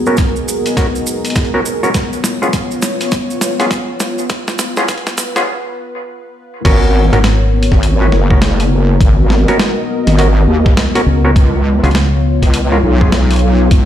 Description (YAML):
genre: glitch hop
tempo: 102 BPM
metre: 4/4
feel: swing 62% on 16ths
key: G# dorian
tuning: A4 = 439 Hz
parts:
  - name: dark analog pad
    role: sustained chords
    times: 0.0-13.9 s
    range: B3 to D#5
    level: -19 LUFS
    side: left 2 dB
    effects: chorus, sidechain pumping
  - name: mellow clav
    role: stabs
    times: 0.1-13.1 s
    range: B3 to B4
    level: -18 LUFS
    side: equal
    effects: sidechain pumping, low-pass filter, digital delay
  - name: maracas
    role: percussion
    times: 0.1-5.5 s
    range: none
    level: -24 LUFS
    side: right 5 dB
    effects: none
  - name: boom bap sampler-style drum kit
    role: drums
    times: 0.2-13.9 s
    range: crash cymbal, hi-hat, snare drum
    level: -19 LUFS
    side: equal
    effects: none
  - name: electronic kick drum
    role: drums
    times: 0.2-13.9 s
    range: none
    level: -11 LUFS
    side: equal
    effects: none
  - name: wobble bass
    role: bass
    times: 6.7-13.9 s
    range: F#1 to D#2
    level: -11 LUFS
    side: equal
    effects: chorus
  - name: fingered electric bass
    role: bass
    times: 7.1-12.4 s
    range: G#1 to C#2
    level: -12 LUFS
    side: equal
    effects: none
room: light reverb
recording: played on a big sound system in a bare room, stone room reverb, high-pass filter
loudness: -11 LUFS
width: side -11 dB against mid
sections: 0.0-6.7 A section; 6.7-13.9 B section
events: build-up 0.0-6.7; drum fill 0.0-5.5; filter sweep on clav 0.0-6.7; filter sweep 0.0-6.7; break 5.5-6.7; drop 6.7-13.9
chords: 0.0 G#m11; 1.9 C#7; 6.7 G#m11; 11.4 C#7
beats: 0.18 0.77 1.36 | 1.95 2.54 3.12 3.71 | 4.30 4.89 5.48 6.06 | 6.65 7.24 7.83 8.42 | 9.01 9.59 10.18 10.77 | 11.36 11.95 12.54 13.12 | 13.71